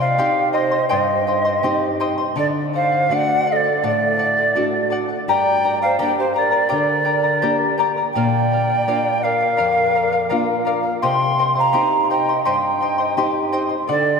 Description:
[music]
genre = andean folk, Andean ensemble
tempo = 83 BPM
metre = 4/4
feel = straight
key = unclear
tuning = A4 = 440 Hz
[part]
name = large quena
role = melody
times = 0.0-14.2 s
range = C5 to C6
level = -19 LUFS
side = right 1 dB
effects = none
[part]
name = polished pan flute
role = second line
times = 0.0-14.2 s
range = G4 to G5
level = -25 LUFS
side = right 2 dB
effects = none
[part]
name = charango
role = accompaniment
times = 0.0-14.2 s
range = G4 to C6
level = -22 LUFS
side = left 3 dB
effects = none
[part]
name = nylon-string guitar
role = accompaniment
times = 0.0-14.2 s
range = F2 to G4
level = -24 LUFS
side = left 2 dB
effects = none
[sound]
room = wet cathedral reverb, RT60 5.7 s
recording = recorded in a church or concert hall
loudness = -16 LUFS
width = side -5 dB against mid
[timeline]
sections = 0.0-14.2 A section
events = none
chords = 0.0 Cm; 2.4 D; 5.3 Gm; 8.2 Bb; 11.0 Cm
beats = 0.18 0.92 1.64 | 2.37 3.10 3.83 4.55 | 5.28 6.00 6.72 7.44 | 8.16 8.88 9.60 10.32 | 11.04 11.75 12.46 13.18 | 13.89

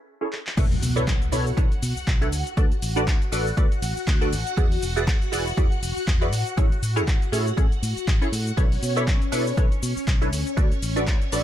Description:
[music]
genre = filtered disco house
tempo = 120 BPM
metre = 4/4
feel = swing 57% on 16ths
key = B dorian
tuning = A4 = 440 Hz
[part]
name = funky polysynth comp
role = accompaniment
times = 0.2-11.4 s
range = C#4 to D5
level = -27 LUFS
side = right 1 dB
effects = chorus, phaser, sidechain pumping, low-pass filter
[part]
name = punchy analog drum machine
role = drums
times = 0.3-11.4 s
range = cabasa, crash cymbal, handclaps, hi-hat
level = -32 LUFS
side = left 1 dB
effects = sidechain pumping on perc, sidechain pumping on hats, sidechain pumping on cymbals
[part]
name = phased string machine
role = sustained chords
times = 0.6-11.4 s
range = C#4 to F#5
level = -32 LUFS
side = left 2 dB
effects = ensemble chorus, phaser, sidechain pumping, low-pass filter
[part]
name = fingered electric bass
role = bass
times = 0.6-11.4 s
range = E1 to B2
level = -27 LUFS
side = equal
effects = tube saturation, sidechain pumping, low-pass filter
[part]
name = electronic kick drum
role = drums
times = 0.6-11.2 s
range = none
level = -21 LUFS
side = equal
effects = none
[part]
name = impact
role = sound effects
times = 0.6-2.6 s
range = none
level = -31 LUFS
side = equal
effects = none
[sound]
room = digital ambience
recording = none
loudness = -20 LUFS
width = side -11 dB against mid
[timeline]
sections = 0.6-11.4 A section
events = break 0.0-0.6; drum fill 0.3; drop 0.6-11.4; impact 0.6-2.6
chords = 0.0 Amaj7; 0.6 Bm11; 2.3 D6; 4.6 E9; 6.3 Amaj7; 8.6 Bm11; 10.3 D6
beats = 0.07 | 0.57 1.07 1.57 2.08 | 2.58 3.08 3.58 4.08 | 4.58 5.08 5.58 6.08 | 6.58 7.08 7.58 8.07 | 8.57 9.07 9.57 10.07 | 10.57 11.07

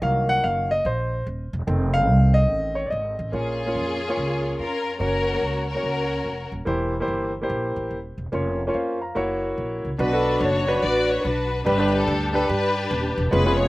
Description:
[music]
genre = uptempo gospel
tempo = 144 BPM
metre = 4/4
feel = swing 65% on 8ths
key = Bb minor, B minor from 10.0 s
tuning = A4 = 440 Hz
[part]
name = clear concert grand piano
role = accompaniment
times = 0.0-13.7 s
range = G2 to Bb5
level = -24 LUFS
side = equal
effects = none
[part]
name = upright bass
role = bass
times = 0.0-13.7 s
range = Eb1 to G2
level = -25 LUFS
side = equal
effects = none
[part]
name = rich symphonic string section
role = melody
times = 3.3-6.5, 10.0-13.7 s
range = Db4 to D5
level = -24 LUFS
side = left 2 dB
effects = slapback echo
[sound]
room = little or no reverb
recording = recorded outdoors, with no room sound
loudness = -21 LUFS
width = side -19 dB against mid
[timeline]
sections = 0.0-3.3 A section; 3.3-10.0 B section; 10.0-13.7 C section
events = grand piano solo 0.0-3.3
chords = 0.0 Cm7b5; 1.7 F7; 3.3 Bbm; 5.0 Gb; 6.7 C7/E; 8.3 Bbm/F; 9.2 Gb7; 10.0 Bm; 11.7 G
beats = | 0.02 0.43 0.85 1.26 | 1.68 2.09 2.50 2.92 | 3.33 3.75 4.17 4.58 | 5.00 5.41 5.83 6.24 | 6.66 7.08 7.49 7.91 | 8.33 8.74 9.16 9.58 | 9.99 10.41 10.82 11.24 | 11.66 12.07 12.49 12.90 | 13.32

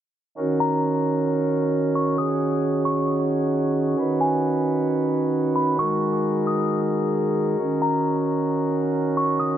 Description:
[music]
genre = hip hop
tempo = 133 BPM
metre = 4/4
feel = half-time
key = Eb minor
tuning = A4 = 439 Hz
[part]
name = pipe organ, principal chorus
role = sustained chords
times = 0.4-9.6 s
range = Eb3 to Cb5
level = -21 LUFS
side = right 1 dB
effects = none
[part]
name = delicate synth tine bell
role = melody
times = 0.6-9.6 s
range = Ab5 to Eb6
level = -27 LUFS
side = left 1 dB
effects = chorus, phaser, tape echo
[sound]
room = light reverb, small room ambience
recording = dry, gritty hardware recording, low-pass filter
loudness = -20 LUFS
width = side -10 dB against mid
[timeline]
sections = 0.4-9.6 A section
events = none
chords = 0.4 Ebm7; 4.0 Db9sus4; 5.8 Gb69; 7.6 Ebm7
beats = | 0.38 0.83 1.28 1.73 | 2.18 2.63 3.08 3.53 | 3.98 4.44 4.89 5.34 | 5.79 6.24 6.69 7.14 | 7.59 8.04 8.50 8.95 | 9.40

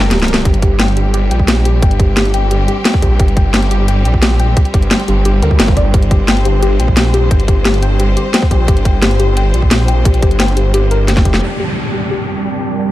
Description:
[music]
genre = dark technical drum and bass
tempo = 175 BPM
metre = 4/4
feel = straight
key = G minor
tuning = A4 = 440 Hz
[part]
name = clear studio string section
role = sustained chords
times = 0.0-12.9 s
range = G3 to C5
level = -22 LUFS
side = equal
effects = sidechain pumping, low-pass filter
[part]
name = soft round pluck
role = arpeggios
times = 0.0-12.9 s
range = G4 to G5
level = -20 LUFS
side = left 3 dB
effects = chorus, sidechain pumping, dub echo
[part]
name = snarling distorted saw bass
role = bass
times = 0.0-11.4 s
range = G1 to D2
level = -13 LUFS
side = equal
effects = distortion, overdrive
[part]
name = drum and bass drum kit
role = drums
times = 0.0-11.4 s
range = hi-hat, snare drum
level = -16 LUFS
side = equal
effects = overdrive, low-pass filter on hats, low-pass filter on snare
[part]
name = electronic kick drum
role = drums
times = 0.5-11.3 s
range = none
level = -12 LUFS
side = equal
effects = overdrive
[part]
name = zap and downlifter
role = sound effects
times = 5.4-5.5, 11.4-12.9 s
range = none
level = -22 LUFS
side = equal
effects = none
[part]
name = deep dark ambient pad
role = texture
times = 11.9-12.9 s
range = G3 to D5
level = -20 LUFS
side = right 4 dB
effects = chorus, built-in reverb, sidechain pumping
[sound]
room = digital ambience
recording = dark, warm production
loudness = -10 LUFS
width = side -15 dB against mid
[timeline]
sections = 0.0-11.4 A section; 11.4-12.9 B section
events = drum fill 0.0-0.5, 11.1-11.4; kick drops out 0.1-0.5; band accent 11.3; filter sweep on string section 11.4-12.9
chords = 0.0 Gm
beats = 0.11 | 0.45 0.80 1.14 1.48 | 1.82 2.17 2.51 2.85 | 3.20 3.54 3.88 4.22 | 4.57 4.91 5.25 5.60 | 5.94 6.28 6.62 6.97 | 7.31 7.65 8.00 8.34 | 8.68 9.03 9.37 9.71 | 10.05 10.40 10.74 11.08 | 11.43 11.77 12.11 12.45 | 12.80

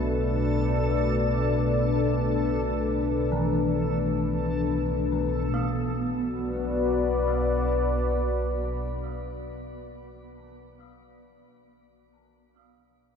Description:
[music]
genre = dark ambient drone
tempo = free time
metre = none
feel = none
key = B minor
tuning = A4 = 440 Hz
[part]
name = dark analog pad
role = sustained chords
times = 0.0-10.7 s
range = B2 to D5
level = -26 LUFS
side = left 3 dB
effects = chorus, shimmer reverb
[part]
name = gamelan-type bronze metallophone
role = arpeggios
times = 0.0-10.2 s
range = E3 to D4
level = -35 LUFS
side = right 3 dB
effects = ping-pong delay
[part]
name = deep rumbling drone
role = drone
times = 0.0-10.2 s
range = B1 to B2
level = -30 LUFS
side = right 1 dB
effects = built-in reverb, wide subtle chorus
[part]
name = backwards swelling texture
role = texture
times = 0.0-5.6 s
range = A4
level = -37 LUFS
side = right 2 dB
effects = built-in reverb, analog chorus, shimmer reverb
[sound]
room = wet cathedral reverb, RT60 5.0 s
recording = dreamy mix soaked in reverb, nothing above 7.9 kHz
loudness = -24 LUFS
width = side -6 dB against mid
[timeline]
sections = 0.0-5.5 A section; 5.5-10.2 B section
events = none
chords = 0.0 A5/B; 5.5 Bm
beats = free time

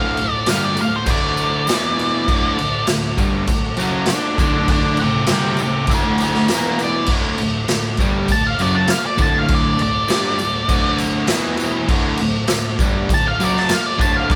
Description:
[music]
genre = garage rock duo or trio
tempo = 100 BPM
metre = 4/4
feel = straight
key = D major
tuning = A4 = 440 Hz
[part]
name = octave-fuzz lead guitar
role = melody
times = 0.0-14.4 s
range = F4 to A5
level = -22 LUFS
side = equal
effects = distortion
[part]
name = overdriven combo organ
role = sustained chords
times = 0.0-14.4 s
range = B3 to E5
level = -33 LUFS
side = equal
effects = none
[part]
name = overdriven electric guitar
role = riff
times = 0.0-14.4 s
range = D2 to G3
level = -23 LUFS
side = equal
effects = none
[part]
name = raw garage drum kit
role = drums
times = 0.2-14.4 s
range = crash cymbal, kick drum, snare drum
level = -22 LUFS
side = equal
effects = none
[part]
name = tambourine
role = percussion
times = 0.2-14.4 s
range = none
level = -37 LUFS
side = equal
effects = none
[sound]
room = moderate studio reverb, RT60 0.8 s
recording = band playing live in one room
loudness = -18 LUFS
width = mono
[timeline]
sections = 0.0-14.4 A section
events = lead electric guitar solo 0.0-14.4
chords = 0.0 D; 1.7 E5; 2.3 D; 6.5 E5; 7.1 D; 11.3 E5; 11.9 D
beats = 0.49 1.09 1.69 | 2.30 2.90 3.50 4.10 | 4.70 5.30 5.91 6.51 | 7.11 7.71 8.31 8.91 | 9.51 10.11 10.71 11.31 | 11.91 12.51 13.11 13.71 | 14.31

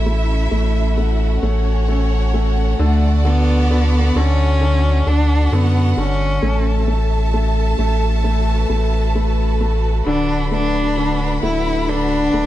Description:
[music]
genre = pop ballad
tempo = 66 BPM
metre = 4/4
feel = straight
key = D major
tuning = A4 = 440 Hz
[part]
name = warm studio violin section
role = second line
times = 0.0-12.5 s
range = C#4 to B5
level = -27 LUFS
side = right 2 dB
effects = none
[part]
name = clear grand piano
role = accompaniment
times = 0.0-12.5 s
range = D3 to A3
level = -23 LUFS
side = left 1 dB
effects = none
[part]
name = warm studio string section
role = sustained chords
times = 0.0-12.5 s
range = D3 to F#5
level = -29 LUFS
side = right 1 dB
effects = none
[part]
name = saturated sub bass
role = bass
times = 0.0-12.5 s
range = D1 to F#2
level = -17 LUFS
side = equal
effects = none
[part]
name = warm cello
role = melody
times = 2.8-12.5 s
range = A3 to E4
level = -20 LUFS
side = left 1 dB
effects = none
[sound]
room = small room reverb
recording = dark, warm production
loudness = -15 LUFS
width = side -14 dB against mid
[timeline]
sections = 0.0-12.5 A section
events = none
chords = 0.0 A6; 2.8 D; 6.4 A6; 10.1 D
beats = 0.06 0.97 1.88 | 2.79 3.70 4.61 5.52 | 6.43 7.34 8.24 9.15 | 10.06 10.97 11.88

